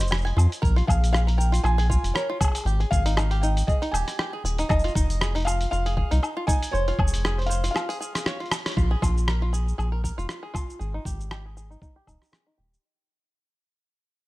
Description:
folktronica; 118 BPM; 4/4; swing 56% on 16ths; A4 = 440 Hz
felt-muted upright piano; melody; 0.0-8.4 s; Db5 to Ab5; -31 LUFS; equal; digital delay
bluegrass banjo; arpeggios; 0.0-12.8 s; Eb4 to Ab5; -32 LUFS; equal; low-pass filter, digital delay
round analog bass; bass; 0.0-12.8 s; Eb1 to F2; -23 LUFS; equal
lo-fi sampler-style drum kit; drums; 0.0-12.8 s; hi-hat, rim click, shaker, woodblock; -30 LUFS; equal; studio reverb
electronic kick drum; drums; 0.6-12.2 s; -24 LUFS; equal; studio reverb
little or no reverb; -22 LUFS; side -19 dB against mid
0.0-8.8 A section; 8.8-12.8 B section
break 7.7-8.8; drum fill 7.7-8.8; band accent 8.6; fade-out 8.8-12.8; filter sweep on five-string banjo 8.8-12.8
0.0 Dbmaj7/F (rootless); 0.6 Bb5; 2.7 Ab5; 4.7 Fm7; 6.7 Dbmaj7/F; 8.8 Bb5; 10.8 Ab5

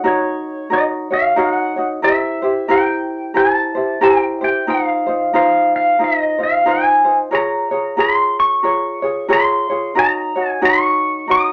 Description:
Hawaiian; 91 BPM; 4/4; swing 60% on 8ths; Bb minor; A4 = 439 Hz
pedal steel guitar; melody; 0.0-11.5 s; Db5 to Eb6; -18 LUFS; equal
ukulele; accompaniment; 0.0-11.5 s; Eb4 to Db5; -20 LUFS; equal
moderate studio ambience, RT60 0.5 s; -16 LUFS; mono
0.0-11.5 A section
0.0 Ebm7; 2.0 C7; 4.7 F7sus4; 7.3 Bbm7; 10.0 Ebm7

